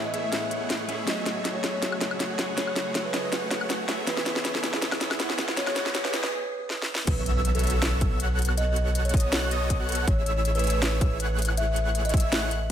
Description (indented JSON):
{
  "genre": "future bass",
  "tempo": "160 BPM",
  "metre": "4/4",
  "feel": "swing 53% on 16ths, half-time",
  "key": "unclear",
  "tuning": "A4 = 440 Hz",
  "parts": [
    { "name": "buzzing kalimba", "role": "melody", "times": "0.0-12.4 s", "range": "G#4 to E5", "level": "-32 LUFS", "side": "right 1 dB", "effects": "vintage 12-bit sampler grit, sidechain pumping, low-pass filter, dub echo" },
    { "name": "clean electric guitar", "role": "accompaniment", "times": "0.0-6.3 s", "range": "E3 to D#5", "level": "-38 LUFS", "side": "left 2 dB", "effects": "sidechain pumping, dub echo" },
    { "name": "shimmering ambient pad", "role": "sustained chords", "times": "0.0-7.0 s", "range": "C#2 to D#6", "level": "-42 LUFS", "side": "equal", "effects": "chorus, built-in reverb, sidechain pumping" },
    { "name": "supersaw chords", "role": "riff", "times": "0.0-12.5 s", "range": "A3 to F#5", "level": "-32 LUFS", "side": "right 1 dB", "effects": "sidechain pumping" },
    { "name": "trap drum kit", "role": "drums", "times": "0.1-12.6 s", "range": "crash cymbal, hi-hat, snare drum, woodblock", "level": "-29 LUFS", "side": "left 1 dB", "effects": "none" },
    { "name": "riser and impact", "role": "sound effects", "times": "3.1-8.6 s", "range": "none", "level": "-37 LUFS", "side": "equal", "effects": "none" },
    { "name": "airy dreamy lead", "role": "arpeggios", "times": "7.1-12.5 s", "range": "D#6 to F#6", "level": "-34 LUFS", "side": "equal", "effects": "chorus, sidechain pumping" },
    { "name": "long sustained 808-style bass", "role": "bass", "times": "7.1-12.7 s", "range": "A1 to B1", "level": "-26 LUFS", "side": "equal", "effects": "sidechain pumping" },
    { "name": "electronic kick drum", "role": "drums", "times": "7.1-12.2 s", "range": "none", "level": "-24 LUFS", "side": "equal", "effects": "none" }
  ],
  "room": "moderate digital room reverb, RT60 0.9 s, digital ambience",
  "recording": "high-pass filter",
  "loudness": "-24 LUFS",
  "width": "side -10 dB against mid",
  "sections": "0.0-7.1 A section; 7.1-12.7 B section",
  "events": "build-up 0.0-7.1; drum fill 0.0-6.3, 6.7-7.1; filter sweep on ambient pad 0.0-7.1; break 6.3-7.1; drop 7.1-12.7; impact 7.1-8.6",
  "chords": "0.0 Amaj7; 1.1 F#m9; 4.1 C#m7; 7.1 B9sus4; 10.1 Amaj7"
}